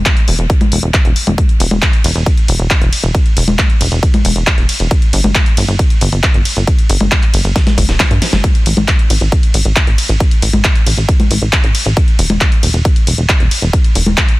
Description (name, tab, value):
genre	uplifting trance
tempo	136 BPM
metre	4/4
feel	straight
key	unclear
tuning	A4 = 437 Hz
part	plucky analog bass	bass	0.0-14.1 s	D1 to G2	-14 LUFS	equal	sidechain pumping
part	big-room dance drum kit	drums	0.1-14.4 s	congas, handclaps, hi-hat, ride cymbal, snare drum	-16 LUFS	left 1 dB	none
part	electronic kick drum	drums	0.1-14.3 s	none	-11 LUFS	equal	none
room	digital ambience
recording	dense, heavily limited modern master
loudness	-10 LUFS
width	side -19 dB against mid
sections	0.0-14.4 A section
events	drum fill 7.6-8.4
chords	none